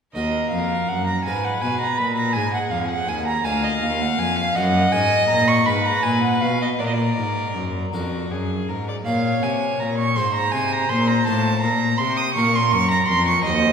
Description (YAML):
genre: classical, baroque-style sonata movement with continuo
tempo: 54 BPM (dotted quarters)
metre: 6/8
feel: straight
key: Bb minor from 9.1 s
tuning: A4 = 440 Hz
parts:
  - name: rich violin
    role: melody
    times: 0.1-13.7 s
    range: Gb4 to F5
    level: -26 LUFS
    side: left 4 dB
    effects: none
  - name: warm violin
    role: second line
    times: 0.1-13.7 s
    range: D5 to Eb6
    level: -21 LUFS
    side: right 3 dB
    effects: none
  - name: harpsichord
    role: accompaniment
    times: 0.1-13.7 s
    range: D2 to C5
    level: -26 LUFS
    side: left 2 dB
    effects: none
  - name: rich cello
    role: bass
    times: 0.1-13.7 s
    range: D2 to C3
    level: -24 LUFS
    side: left 1 dB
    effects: none
room: wet concert hall reverb, RT60 1.9 s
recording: recorded in a church or concert hall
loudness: -18 LUFS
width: side -6 dB against mid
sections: 0.1-13.7 A section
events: none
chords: 0.1 Ebm; 1.3 Fdim/Ab; 2.4 Bb7; 4.6 Ebm/Gb; 5.7 Fm7b5/Ab; 6.8 Bb; 9.1 Bbm; 10.2 Ab; 11.3 F7/A; 12.4 Bbm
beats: | 0.14 1.26 | 2.35 3.45 | 4.55 5.66 | 6.79 7.93 | 9.05 10.16 | 11.26 12.36 | 13.45